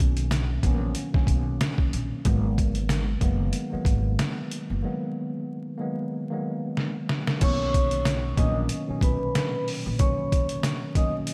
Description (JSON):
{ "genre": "hip hop, boom-bap hip-hop", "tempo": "93 BPM", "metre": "4/4", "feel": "swing 56% on 16ths", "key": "unclear", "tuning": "A4 = 440 Hz", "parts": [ { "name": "tine electric piano", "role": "accompaniment", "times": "0.0-11.3 s", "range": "A#2 to C#4", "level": "-33 LUFS", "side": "equal", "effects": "overdrive, cassette tape, high-pass filter, low-pass filter" }, { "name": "upright bass", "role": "bass", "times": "0.0-10.0 s", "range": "F#1 to B1", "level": "-30 LUFS", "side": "equal", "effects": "none" }, { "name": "trip hop sampler-style drum kit", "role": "drums", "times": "0.0-11.3 s", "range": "crash cymbal, hi-hat, kick drum, snare drum", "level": "-28 LUFS", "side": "equal", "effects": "none" }, { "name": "finger snaps", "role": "percussion", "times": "0.3-10.8 s", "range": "none", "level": "-47 LUFS", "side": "equal", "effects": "none" }, { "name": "vibraphone with medium mallets", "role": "melody", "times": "7.4-11.1 s", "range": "B4 to D#6", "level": "-32 LUFS", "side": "equal", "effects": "high-pass filter, low-pass filter, tape echo" } ], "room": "light reverb, small room ambience", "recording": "vinyl crackle", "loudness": "-26 LUFS", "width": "mono", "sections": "0.0-7.4 A section; 7.4-11.3 B section", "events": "break 4.8-7.4; drum fill 6.8-7.4", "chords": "0.0 Bmaj9; 2.3 G#m9; 7.4 Bmaj9", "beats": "0.32 0.96 1.61 | 2.25 2.90 3.54 4.19 | 4.83 5.48 6.12 6.77 | 7.42 8.06 8.71 9.35 | 10.00 10.64 11.29" }